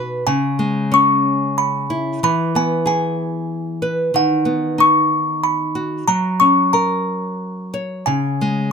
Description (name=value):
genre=children's music, lullaby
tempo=92 BPM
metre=3/4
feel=rubato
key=unclear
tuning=A4 = 440 Hz
part: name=nylon-string guitar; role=accompaniment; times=0.0-8.7 s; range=B2 to C#5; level=-19 LUFS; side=left 1 dB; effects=none
part: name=music box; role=melody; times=0.3-8.7 s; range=F#5 to C#6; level=-17 LUFS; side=equal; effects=none
room=light reverb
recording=close, detailed microphones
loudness=-16 LUFS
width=side -6 dB against mid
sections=0.3-8.7 A section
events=none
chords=0.3 C#m; 2.2 E; 4.1 B/D#; 6.1 F#; 8.1 C#5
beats=| 0.27 0.93 1.58 | 2.22 2.86 3.50 | 4.14 4.79 5.43 | 6.08 6.74 7.41 | 8.07